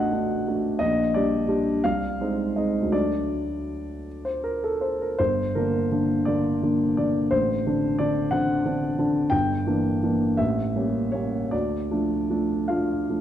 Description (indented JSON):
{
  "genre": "classical, romantic character piece for solo piano",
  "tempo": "47-60 BPM (dotted quarters)",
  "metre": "6/8",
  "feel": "rubato",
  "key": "D minor from 9.3 s",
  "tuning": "A4 = 440 Hz",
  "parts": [
    { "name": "warm grand piano", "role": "solo", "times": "0.0-13.2 s", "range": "G1 to G5", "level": "-22 LUFS", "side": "equal", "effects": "none" }
  ],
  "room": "wet recital hall reverb, RT60 1.4 s",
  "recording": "dark, warm production",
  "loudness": "-22 LUFS",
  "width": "side -11 dB against mid",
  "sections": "0.0-13.2 A section",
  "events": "none",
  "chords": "0.0 D7/A; 0.8 Gm/Bb; 1.8 Ab/C; 2.9 D; 5.2 Gm; 7.3 D7/A; 9.3 Em7b5/G; 10.4 A7b9; 11.5 Dm"
}